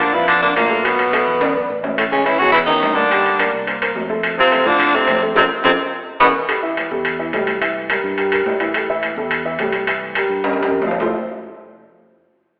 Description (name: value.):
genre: Afro-Cuban jazz.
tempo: 213 BPM.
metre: 4/4.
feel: straight.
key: F major.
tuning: A4 = 439 Hz.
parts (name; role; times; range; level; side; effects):
growling tenor saxophone; melody; 0.0-6.3 s; A3 to Gb4; -20 LUFS; equal; none.
mellow baritone saxophone; second line; 0.0-6.3 s; A2 to Gb3; -22 LUFS; equal; none.
warm upright piano; accompaniment; 0.0-11.1 s; E3 to G#5; -24 LUFS; equal; none.
fingered electric bass; bass; 0.0-11.1 s; F1 to A2; -34 LUFS; equal; none.
timbales; percussion; 0.3-11.1 s; none; -23 LUFS; equal; none.
room: wet recital hall reverb, RT60 1.7 s.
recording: recorded in a church or concert hall, telephone sound.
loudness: -17 LUFS.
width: mono.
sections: 0.0-6.5 A section; 6.5-11.0 B section; 11.0-12.1 C section.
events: drum fill 1.4-2.0, 5.6-6.5, 10.4-11.0; band accent 5.4-6.5.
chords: 0.0 Bb; 0.8 B5; 1.4 E5; 2.0 Amaj7; 3.1 Gm; 3.7 Fadd11/C; 4.2 F; 5.9 E; 6.5 Am7; 7.6 C7; 8.7 Am7; 9.9 C7; 11.0 Fmaj7.